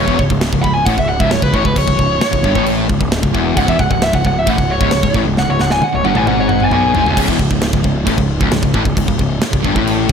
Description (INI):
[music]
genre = heavy metal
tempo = 133 BPM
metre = 4/4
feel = straight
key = C# minor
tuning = A4 = 440 Hz
[part]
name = high-gain lead guitar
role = melody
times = 0.0-7.2 s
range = B4 to B5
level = -18 LUFS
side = right 1 dB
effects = distortion
[part]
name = distorted electric guitar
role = riff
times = 0.0-10.1 s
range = C#2 to B2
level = -19 LUFS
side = left 11 dB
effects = overdrive
[part]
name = sludgy distorted guitar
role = riff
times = 0.0-10.1 s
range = C#2 to B2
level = -20 LUFS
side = right 11 dB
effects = overdrive
[part]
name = fuzz picked electric bass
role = bass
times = 0.0-10.1 s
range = C#1 to B1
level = -20 LUFS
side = equal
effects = overdrive
[part]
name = tight metal drum kit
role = drums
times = 0.1-10.1 s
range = crash cymbal, kick drum, snare drum, toms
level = -18 LUFS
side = equal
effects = none
[sound]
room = studio ambience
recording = none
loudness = -12 LUFS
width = side -7 dB against mid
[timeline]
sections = 0.0-7.2 A section; 7.2-10.1 B section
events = lead electric guitar solo 0.0-7.2; drum fill 5.4-7.2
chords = 0.0 C#m; 7.2 N.C.